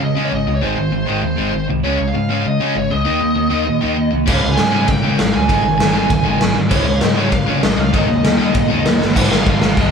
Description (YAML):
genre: punk rock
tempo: 197 BPM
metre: 4/4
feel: straight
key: unclear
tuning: A4 = 441 Hz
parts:
  - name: bluesy overdriven lead guitar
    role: melody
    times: 0.0-9.9 s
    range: C5 to Ab5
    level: -22 LUFS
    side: right 1 dB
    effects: distortion
  - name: crunchy overdriven guitar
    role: riff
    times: 0.0-9.9 s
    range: Ab2 to Eb4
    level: -20 LUFS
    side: left 6 dB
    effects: none
  - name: distorted electric guitar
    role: riff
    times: 0.0-9.9 s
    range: Ab2 to Eb4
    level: -21 LUFS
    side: right 6 dB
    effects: distortion
  - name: overdriven picked electric bass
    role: bass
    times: 0.0-9.9 s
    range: G1 to Db3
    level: -23 LUFS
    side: equal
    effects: none
  - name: raw garage drum kit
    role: drums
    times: 4.3-9.8 s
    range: crash cymbal, kick drum, ride cymbal, snare drum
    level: -16 LUFS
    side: left 1 dB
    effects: none
room: light reverb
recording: band playing live in one room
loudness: -13 LUFS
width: side -6 dB against mid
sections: 0.0-9.2 A section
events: half time 0.0-9.2; drum fill 9.0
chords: 0.0 Db5; 0.6 Ab; 1.8 Db5; 3.1 Eb5; 4.3 Db5; 5.5 Ab5; 6.7 Db; 7.9 Eb5; 9.2 Ab